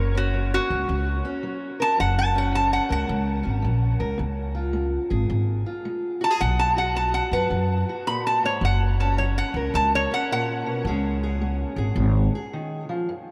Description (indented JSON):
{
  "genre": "acoustic country blues, solo or duo",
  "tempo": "108 BPM",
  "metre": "4/4",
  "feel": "swing 65% on 8ths",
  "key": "F# major",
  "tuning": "A4 = 440 Hz",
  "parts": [
    { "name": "lap resonator guitar", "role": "melody", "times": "0.0-10.9 s", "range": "F#4 to B5", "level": "-28 LUFS", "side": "equal", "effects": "none" },
    { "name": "fingerpicked steel-string acoustic guitar", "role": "accompaniment", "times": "0.0-13.3 s", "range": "F#2 to B4", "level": "-32 LUFS", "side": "equal", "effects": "none" },
    { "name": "upright bass", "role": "bass", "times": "0.0-12.3 s", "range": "F#1 to F#2", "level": "-26 LUFS", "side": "equal", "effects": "none" }
  ],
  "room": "wet huge ambient reverb, RT60 8.9 s",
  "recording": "in a vast, echoing space",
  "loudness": "-24 LUFS",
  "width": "mono",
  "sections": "0.0-13.1 A section",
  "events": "resonator guitar played with a steel bar solo 0.0-13.1",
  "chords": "0.0 F#; 4.2 C#; 6.4 B5; 8.6 F#; 10.9 C#5",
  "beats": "0.34 0.89 1.44 | 1.99 2.54 3.09 3.64 | 4.20 4.75 5.30 5.85 | 6.41 6.96 7.51 8.07 | 8.62 9.18 9.74 10.30 | 10.85 11.41 11.97 12.53 | 13.09"
}